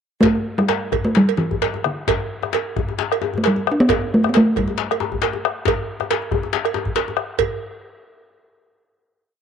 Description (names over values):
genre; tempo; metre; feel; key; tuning
west african traditional, West African drum ensemble; 129-148 BPM; 4/4; swing 54% on 16ths; G major pentatonic; A4 = 440 Hz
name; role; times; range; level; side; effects
talking drum; melody; 0.2-7.0 s; D3 to D4; -17 LUFS; equal; none
bombo; percussion; 0.2-7.6 s; none; -26 LUFS; left 3 dB; none
cowbell; percussion; 0.2-7.6 s; none; -24 LUFS; right 14 dB; none
djembe; percussion; 0.2-7.6 s; none; -24 LUFS; left 8 dB; none
room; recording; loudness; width
wet spring reverb, RT60 2.4 s; 1960s-style stereo with parts hard left and right; -18 LUFS; side -7 dB against mid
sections
0.2-7.4 A section; 7.4-9.0 final hit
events
speeding up 0.2-9.0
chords
none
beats
| 0.22 0.69 1.15 1.61 | 2.07 2.53 2.99 3.44 | 3.89 4.34 4.79 5.23 | 5.67 6.10 6.54 6.96 | 7.39